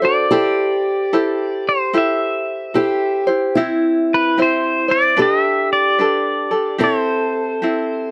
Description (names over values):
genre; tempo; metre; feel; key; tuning
Hawaiian; 74 BPM; 4/4; swing 64% on 8ths; C major; A4 = 440 Hz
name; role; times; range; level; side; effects
pedal steel guitar; melody; 0.0-8.1 s; B4 to E5; -21 LUFS; equal; none
fingerpicked acoustic archtop guitar; second line; 0.0-8.1 s; E4 to A4; -22 LUFS; equal; none
tenor ukulele; accompaniment; 0.0-8.1 s; C4 to C5; -23 LUFS; equal; none
room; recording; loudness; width
little or no reverb; dry, close 1970s-style studio recording; -17 LUFS; mono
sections
0.0-8.1 A section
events
none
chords
0.3 Am7; 3.6 C; 5.2 Gadd9; 6.8 C